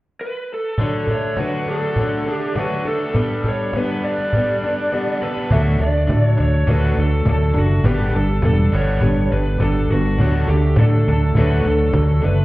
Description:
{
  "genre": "folk rock and heartland rock",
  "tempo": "102 BPM",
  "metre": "4/4",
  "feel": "straight",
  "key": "D major",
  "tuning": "A4 = 443 Hz",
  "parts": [
    { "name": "lead guitar through a small cranked amp", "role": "melody", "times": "0.2-12.4 s", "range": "F#4 to E5", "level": "-24 LUFS", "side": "right 1 dB", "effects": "overdrive, plate reverb" },
    { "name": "picked acoustic archtop guitar", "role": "accompaniment", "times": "0.8-12.4 s", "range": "D3 to A4", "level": "-23 LUFS", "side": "left 2 dB", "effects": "none" },
    { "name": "biting overdriven guitar", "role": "riff", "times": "0.8-12.4 s", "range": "D3 to A4", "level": "-25 LUFS", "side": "right 1 dB", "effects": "none" },
    { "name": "cajon", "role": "drums", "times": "0.8-12.3 s", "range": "none", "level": "-22 LUFS", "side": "equal", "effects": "none" },
    { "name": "fingered electric bass", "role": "bass", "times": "5.5-12.4 s", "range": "E1 to A2", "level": "-16 LUFS", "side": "equal", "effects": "none" }
  ],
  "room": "light reverb",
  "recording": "heard muffled through a wall, stone room reverb, EQ",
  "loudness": "-16 LUFS",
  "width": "side -18 dB against mid",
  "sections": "0.8-5.5 A section; 5.5-12.4 B section",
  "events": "break 4.9-5.5",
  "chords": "0.0 N.C.; 0.8 D; 3.2 Gadd9; 5.5 D; 7.8 Gadd9; 10.2 D",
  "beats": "0.21 | 0.80 1.39 1.98 2.57 | 3.15 3.74 4.33 4.92 | 5.50 6.09 6.68 7.26 | 7.85 8.43 9.02 9.60 | 10.19 10.77 11.36 11.94"
}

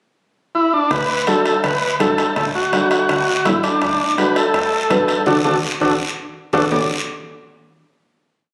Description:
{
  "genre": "latin, cumbia",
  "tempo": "166 BPM",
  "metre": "4/4",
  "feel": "straight",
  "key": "D major",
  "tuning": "A4 = 442 Hz",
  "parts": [
    { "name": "overdriven combo organ", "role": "melody", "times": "0.5-6.9 s", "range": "D4 to D5", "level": "-20 LUFS", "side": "equal", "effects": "none" },
    { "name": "plucky analog bass", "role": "bass", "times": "0.9-6.9 s", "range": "A1 to D2", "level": "-32 LUFS", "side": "equal", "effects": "none" },
    { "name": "bombo", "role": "percussion", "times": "0.9-6.8 s", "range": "none", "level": "-27 LUFS", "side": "equal", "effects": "none" },
    { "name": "congas", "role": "percussion", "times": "0.9-6.8 s", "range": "none", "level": "-30 LUFS", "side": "equal", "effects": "none" },
    { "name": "guiro", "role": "percussion", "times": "0.9-6.8 s", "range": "none", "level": "-29 LUFS", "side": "equal", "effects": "none" },
    { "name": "timbales", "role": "percussion", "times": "0.9-6.8 s", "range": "none", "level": "-31 LUFS", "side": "equal", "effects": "none" },
    { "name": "nylon-string guitar", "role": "accompaniment", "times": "1.3-6.9 s", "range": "D4 to B4", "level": "-23 LUFS", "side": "equal", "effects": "none" }
  ],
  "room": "wet large studio reverb, RT60 1.4 s",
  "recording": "recorded on a phone in the room, club reverb, compression",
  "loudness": "-18 LUFS",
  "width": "mono",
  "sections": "0.0-0.9 pickup bar; 0.9-6.7 A section; 6.7-8.2 final chord",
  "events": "drum fill 5.3-6.7; band accent 5.3-6.7",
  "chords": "0.0 N.C.; 0.9 D",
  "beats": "0.18 0.54 | 0.91 1.27 1.64 2.00 | 2.37 2.73 3.09 3.46 | 3.82 4.18 4.54 4.91 | 5.27 5.63 5.99 6.35 | 6.72"
}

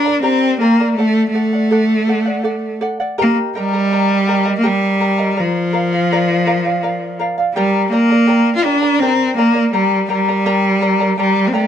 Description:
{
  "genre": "andean folk",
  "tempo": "82 BPM",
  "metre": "3/4",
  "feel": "straight",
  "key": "G minor",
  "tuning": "A4 = 440 Hz",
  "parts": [
    { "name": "clear cello", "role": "melody", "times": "0.0-11.7 s", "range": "F3 to F4", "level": "-14 LUFS", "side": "equal", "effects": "slapback echo" },
    { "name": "charango", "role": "accompaniment", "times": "0.0-11.7 s", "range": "G4 to Bb5", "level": "-19 LUFS", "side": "left 1 dB", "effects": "none" }
  ],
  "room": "light reverb",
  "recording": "close, detailed microphones",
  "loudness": "-13 LUFS",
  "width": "side -9 dB against mid",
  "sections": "0.0-11.7 A section",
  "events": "none",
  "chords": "0.0 Gm; 1.0 D; 3.2 Eb; 5.4 Bb; 7.6 Gm",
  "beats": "0.26 | 0.99 1.72 2.45 | 3.19 3.92 4.65 | 5.38 6.10 6.83 | 7.56 8.28 9.01 | 9.73 10.45 11.17"
}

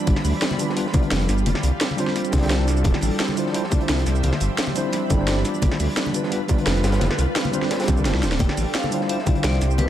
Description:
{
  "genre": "liquid drum and bass",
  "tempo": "173 BPM",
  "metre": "4/4",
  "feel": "straight",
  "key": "D dorian",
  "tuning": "A4 = 440 Hz",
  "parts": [
    { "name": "mellow tine electric piano", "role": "accompaniment", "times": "0.0-9.6 s", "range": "G3 to D5", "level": "-26 LUFS", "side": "right 1 dB", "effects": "medium stereo tremolo, dub echo" },
    { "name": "shimmering ambient pad", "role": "sustained chords", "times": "0.0-9.9 s", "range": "E3 to B5", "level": "-28 LUFS", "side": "right 1 dB", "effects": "chorus, built-in reverb" },
    { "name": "swelling detuned saw bass", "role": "bass", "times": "0.1-9.9 s", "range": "D1 to D2", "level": "-21 LUFS", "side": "equal", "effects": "none" },
    { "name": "crunchy breakbeat drum kit", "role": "drums", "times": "0.1-9.9 s", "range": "hi-hat, snare drum", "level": "-32 LUFS", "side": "equal", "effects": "high-pass filter on hats, high-pass filter on snare, high-pass filter on room" },
    { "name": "drum and bass drum kit", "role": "drums", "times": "0.1-9.9 s", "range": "hi-hat, shaker, snare drum", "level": "-26 LUFS", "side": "right 1 dB", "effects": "none" },
    { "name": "electronic kick drum", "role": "drums", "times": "0.1-9.3 s", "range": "none", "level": "-20 LUFS", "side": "equal", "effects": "none" },
    { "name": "congas and bongos", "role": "percussion", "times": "0.1-9.9 s", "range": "none", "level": "-28 LUFS", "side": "left 3 dB", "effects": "none" },
    { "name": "vibraphone with hard mallets", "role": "arpeggios", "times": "8.4-9.9 s", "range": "B4 to G5", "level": "-30 LUFS", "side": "left 6 dB", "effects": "dub echo" }
  ],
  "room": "light reverb, small room ambience",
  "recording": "none",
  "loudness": "-19 LUFS",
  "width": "side -11 dB against mid",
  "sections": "0.0-9.9 A section",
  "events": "drum fill 8.1-8.4",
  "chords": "0.0 G7; 1.5 F69; 2.9 Dm11; 4.1 Cmaj9; 5.5 G7; 7.0 F69; 8.4 Dm11",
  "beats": "| 0.07 0.42 0.77 1.12 | 1.46 1.81 2.16 2.50 | 2.85 3.20 3.54 3.89 | 4.24 4.58 4.93 5.28 | 5.62 5.97 6.32 6.67 | 7.01 7.36 7.71 8.05 | 8.40 8.75 9.09 9.44 | 9.79"
}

